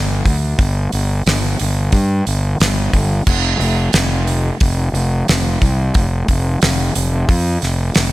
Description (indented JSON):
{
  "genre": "classic rock",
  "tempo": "90 BPM",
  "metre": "4/4",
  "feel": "straight",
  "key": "unclear",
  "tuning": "A4 = 440 Hz",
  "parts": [
    { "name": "fuzz fingered electric bass", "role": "bass", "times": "0.0-8.1 s", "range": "F1 to G2", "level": "-16 LUFS", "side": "equal", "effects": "overdrive" },
    { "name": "damped 70s drum kit", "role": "drums", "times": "0.3-8.1 s", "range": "crash cymbal, hi-hat, kick drum, snare drum", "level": "-17 LUFS", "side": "equal", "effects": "none" }
  ],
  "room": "light reverb",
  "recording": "none",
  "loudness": "-14 LUFS",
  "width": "side -17 dB against mid",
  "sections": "0.0-8.1 A section",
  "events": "none",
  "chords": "none",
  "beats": "| 0.60 1.27 1.94 2.61 | 3.27 3.94 4.61 5.28 | 5.95 6.62 7.29 7.96"
}